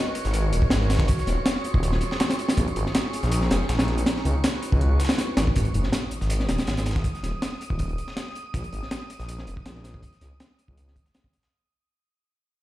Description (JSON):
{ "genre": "drum and bass, jungle", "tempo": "161 BPM", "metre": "4/4", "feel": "straight", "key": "G# minor", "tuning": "A4 = 440 Hz", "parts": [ { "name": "warbly tape-like pad", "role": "sustained chords", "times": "0.0-5.5 s", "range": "B#3 to C#5", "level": "-32 LUFS", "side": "equal", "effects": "chorus, built-in reverb" }, { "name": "wind-like tuned noise texture", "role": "texture", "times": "0.0-11.5 s", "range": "C#6 to D#6", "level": "-38 LUFS", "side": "right 1 dB", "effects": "built-in reverb" }, { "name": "crunchy breakbeat drum kit", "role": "drums", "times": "0.1-11.4 s", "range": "hi-hat, kick drum, snare drum", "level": "-25 LUFS", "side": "equal", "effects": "none" }, { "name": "detuned saw bass", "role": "bass", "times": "0.2-10.9 s", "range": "D#1 to C#2", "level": "-25 LUFS", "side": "equal", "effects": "none" }, { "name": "dusty soul sampler-style drum kit", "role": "drums", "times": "0.2-11.5 s", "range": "hi-hat, snare drum", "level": "-37 LUFS", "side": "equal", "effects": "overdrive, high-pass filter on hats, high-pass filter on snare" }, { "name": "impact", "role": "sound effects", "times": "5.6-7.0 s", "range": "none", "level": "-34 LUFS", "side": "equal", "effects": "none" } ], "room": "studio reverb", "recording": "played on a big sound system in a bare room, large studio reverb", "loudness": "-22 LUFS", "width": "side -15 dB against mid", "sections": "0.0-5.6 A section; 5.6-11.5 B section", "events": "drop 0.0-5.6; fade-out 5.6-11.5; impact 5.6-7.0", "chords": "0.0 G#m11; 1.1 D#m11; 2.6 A#m11; 4.1 C#m11; 5.6 G#5; 7.0 N.C.; 8.5 A#sus4; 10.0 C#sus2" }